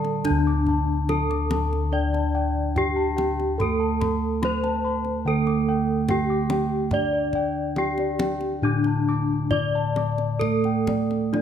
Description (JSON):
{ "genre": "Javanese gamelan", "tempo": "71 BPM", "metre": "4/4", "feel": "uneven beats", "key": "D slendro", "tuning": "A4 = 440 Hz", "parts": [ { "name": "gamelan-type bronze metallophone", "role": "melody", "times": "0.0-11.4 s", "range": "D4 to D5", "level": "-26 LUFS", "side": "left 2 dB", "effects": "none" }, { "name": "gamelan-type bronze metallophone", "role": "accompaniment", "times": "0.0-11.4 s", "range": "D3 to D4", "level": "-28 LUFS", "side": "right 4 dB", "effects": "none" }, { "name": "gamelan-type bossed gongs", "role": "arpeggios", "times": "0.0-11.4 s", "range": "D5 to D6", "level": "-30 LUFS", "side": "left 4 dB", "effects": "none" }, { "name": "gamelan-type bossed gongs", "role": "bass", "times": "0.0-11.4 s", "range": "D2 to D5", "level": "-26 LUFS", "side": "left 1 dB", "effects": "none" }, { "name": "kendang", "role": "percussion", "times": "0.0-11.4 s", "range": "none", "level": "-31 LUFS", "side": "left 1 dB", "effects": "none" } ], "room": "moderate scoring stage reverb, RT60 1.6 s", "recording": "close, detailed microphones", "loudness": "-21 LUFS", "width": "side -8 dB against mid", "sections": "0.0-11.4 A section", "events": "none", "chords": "none", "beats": "| 0.26 1.09 1.92 2.75 | 3.59 4.42 5.25 6.09 | 6.92 7.76 8.63 9.51 | 10.41 11.34" }